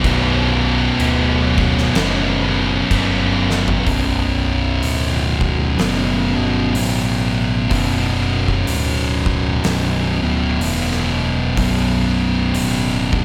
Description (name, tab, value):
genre	stoner and doom metal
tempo	62 BPM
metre	4/4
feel	swing 61% on 8ths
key	B minor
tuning	A4 = 439 Hz
part	high-gain distorted guitar	riff	0.0-3.9 s	B1 to B2	-24 LUFS	equal	distortion
part	thick fuzz guitar	riff	0.0-13.2 s	B1 to B2	-23 LUFS	equal	distortion
part	thick fuzz guitar	riff	0.0-13.2 s	B1 to B2	-23 LUFS	equal	distortion
part	overdriven picked electric bass	bass	0.0-13.2 s	B0 to A1	-24 LUFS	equal	none
part	oversized low-tuned drum kit	drums	0.0-13.2 s	crash cymbal, hi-hat, kick drum, snare drum, toms	-27 LUFS	equal	none
room	little or no reverb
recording	none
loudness	-18 LUFS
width	mono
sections	0.0-3.9 A section; 3.9-13.2 B section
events	drum fill 3.4-3.9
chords	0.0 Bm